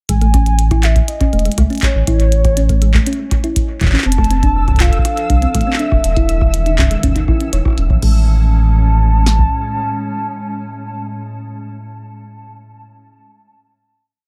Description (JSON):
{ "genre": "IDM", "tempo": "121 BPM", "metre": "4/4", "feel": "straight", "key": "A lydian", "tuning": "A4 = 438 Hz", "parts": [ { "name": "warbly nostalgic lead", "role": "melody", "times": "0.1-11.4 s", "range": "C#5 to A5", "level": "-25 LUFS", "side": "equal", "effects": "chorus, cassette tape, dub echo" }, { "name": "thumb-piano-like synth pluck", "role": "arpeggios", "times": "0.1-8.3 s", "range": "G#3 to C#5", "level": "-24 LUFS", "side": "equal", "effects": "chorus, analog delay" }, { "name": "warm sub bass", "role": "bass", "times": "0.1-9.5 s", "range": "E1 to C#2", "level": "-16 LUFS", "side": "equal", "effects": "none" }, { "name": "electro analog drum machine", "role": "drums", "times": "0.1-9.5 s", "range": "kick drum, snare drum", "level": "-18 LUFS", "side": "equal", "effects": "small room ambience" }, { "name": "glitchy drum kit", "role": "drums", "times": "0.1-8.1 s", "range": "crash cymbal, handclaps, hi-hat, rim click", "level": "-25 LUFS", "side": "equal", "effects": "small room ambience" }, { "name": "glassy FM pad", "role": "sustained chords", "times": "4.6-11.4 s", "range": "A2 to A4", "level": "-28 LUFS", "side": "equal", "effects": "ensemble chorus, built-in reverb, sidechain pumping" }, { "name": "flickering grainy texture", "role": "texture", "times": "4.4-8.0 s", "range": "E6", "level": "-34 LUFS", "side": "equal", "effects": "built-in reverb, sidechain pumping" } ], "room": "digital ambience", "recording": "echo-heavy mix", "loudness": "-14 LUFS", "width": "mono", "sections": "0.1-8.0 groove; 8.0-12.0 final chord", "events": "none", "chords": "0.1 A; 4.1 F6; 6.0 C#madd9/E; 8.0 Amaj7", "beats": "| 0.09 0.59 1.08 1.58 | 2.08 2.57 3.07 3.56 | 4.06 4.55 5.05 5.55 | 6.04 6.54 7.03 7.53 | 8.03 8.52 9.02 9.51 | 10.01 10.50 11.00" }